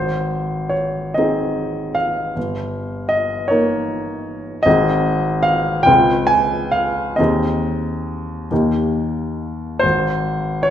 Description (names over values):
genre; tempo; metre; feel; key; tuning
classical, romantic nocturne for solo piano; 45-53 BPM (dotted quarters); 6/8; rubato; Ab major; A4 = 442 Hz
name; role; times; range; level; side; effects
warm baby grand piano; solo; 0.0-10.7 s; G1 to Ab5; -16 LUFS; equal; none
room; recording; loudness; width
wet recital hall reverb, RT60 1.6 s; minimal, uncompressed stereo recording; -16 LUFS; side -10 dB against mid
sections
0.0-10.7 A section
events
none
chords
0.0 Ab; 2.4 Eb7/G; 4.7 Ab; 5.9 Dbmaj7; 7.2 Ab/Eb; 8.5 Eb; 9.8 Ab